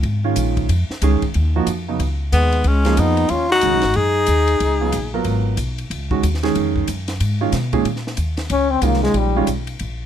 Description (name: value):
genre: modal jazz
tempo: 184 BPM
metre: 4/4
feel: swing 62% on 8ths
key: Eb minor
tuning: A4 = 440 Hz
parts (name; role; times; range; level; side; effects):
- upright bass; bass; 0.0-10.1 s; Ab1 to Cb3; -20 LUFS; equal; none
- compact cocktail drum kit; drums; 0.0-9.9 s; hi-hat, kick drum, ride cymbal, snare drum; -29 LUFS; left 1 dB; none
- clear concert grand piano; accompaniment; 0.2-9.5 s; Bb2 to Bb4; -21 LUFS; right 6 dB; none
- clear tenor saxophone; melody; 2.3-5.1 s; Cb4 to Ab4; -18 LUFS; left 1 dB; none
- bright trombone; second line; 2.3-5.1, 8.5-9.5 s; G3 to Eb4; -22 LUFS; left 6 dB; none
room: little or no reverb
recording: close, detailed microphones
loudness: -16 LUFS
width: side -9 dB against mid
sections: 0.0-7.9 A section; 7.9-10.1 B section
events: trombone solo 7.9-10.1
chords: 0.0 Eb9sus4; 6.6 Gbmaj7sus2/F; 7.9 Bbm9